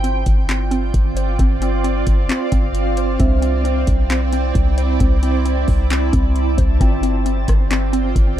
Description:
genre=hip hop, atmospheric cloud-rap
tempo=133 BPM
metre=4/4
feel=half-time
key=unclear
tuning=A4 = 441 Hz
part: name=shimmering ambient pad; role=sustained chords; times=0.0-8.4 s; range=C4 to A5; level=-22 LUFS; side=right 4 dB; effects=chorus, built-in reverb, sidechain pumping
part: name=hollow square pluck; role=arpeggios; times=0.0-8.4 s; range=C4 to C5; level=-25 LUFS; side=left 3 dB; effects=chorus, tape echo
part: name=clean 808-style bass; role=bass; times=0.0-8.4 s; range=G1 to C2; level=-18 LUFS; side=equal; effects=none
part: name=booming analog drum machine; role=drums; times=0.0-8.3 s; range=handclaps, hi-hat, kick drum, rim click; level=-18 LUFS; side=equal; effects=none
part: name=celesta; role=texture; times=0.0-8.4 s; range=D4 to G5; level=-35 LUFS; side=left 2 dB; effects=none
room=little or no reverb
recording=dark, warm production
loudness=-15 LUFS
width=side -12 dB against mid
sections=0.0-6.8 A section; 6.8-8.4 B section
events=none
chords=0.0 G7sus4; 3.2 Cadd9; 6.8 G7sus4

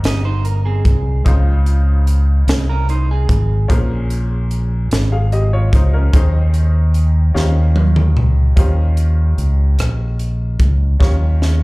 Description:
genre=slow gospel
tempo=49 BPM (dotted quarters)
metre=6/8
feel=straight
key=unclear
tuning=A4 = 440 Hz
part: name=bright upright piano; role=accompaniment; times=0.0-11.6 s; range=Ab2 to G5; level=-26 LUFS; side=left 2 dB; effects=slapback echo
part: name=fingered electric bass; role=bass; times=0.0-11.6 s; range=G1 to Eb2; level=-14 LUFS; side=equal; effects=none
part: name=crisp fusion drum kit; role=drums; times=0.0-11.6 s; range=hi-hat, kick drum, rim click, snare drum, toms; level=-16 LUFS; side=equal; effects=none
part: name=clean electric guitar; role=second line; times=0.1-3.7 s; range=C4 to Eb5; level=-26 LUFS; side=right 5 dB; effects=slapback echo
room=studio ambience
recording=live gig heard through the venue's PA, club reverb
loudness=-13 LUFS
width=side -23 dB against mid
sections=0.0-8.6 A section; 8.6-11.6 B section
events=drum fill 7.4-8.6, 11.0-11.6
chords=0.0 Abmaj7; 1.3 Dbmaj9; 3.7 Bbm9; 6.1 Ab/Eb; 7.4 Eb13

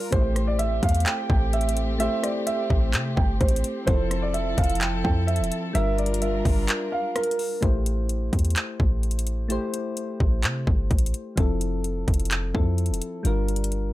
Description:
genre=hip hop, trap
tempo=128 BPM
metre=4/4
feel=half-time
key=A phrygian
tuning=A4 = 442 Hz
part: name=dark concert grand piano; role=melody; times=0.0-7.6 s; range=Bb4 to G5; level=-28 LUFS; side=right 3 dB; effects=ping-pong delay
part: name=soft electric-piano-like synth keys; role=accompaniment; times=0.0-13.9 s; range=F3 to C5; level=-31 LUFS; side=left 2 dB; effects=chorus
part: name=dark chamber string section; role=sustained chords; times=0.0-7.6 s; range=F3 to Bb4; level=-31 LUFS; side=equal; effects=none
part: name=clean 808-style bass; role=bass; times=0.1-13.9 s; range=E1 to C3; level=-25 LUFS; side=equal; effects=none
part: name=trap drum kit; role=drums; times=0.1-13.8 s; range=handclaps, hi-hat, kick drum, rim click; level=-25 LUFS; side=equal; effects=none
room=little or no reverb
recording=none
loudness=-22 LUFS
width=side -16 dB against mid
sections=0.0-7.6 A section; 7.6-13.9 B section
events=break 6.7-7.6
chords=0.1 Am7; 3.9 Fmaj7; 5.8 Gm7; 7.6 Am7; 11.4 Fmaj7; 13.2 Gm7

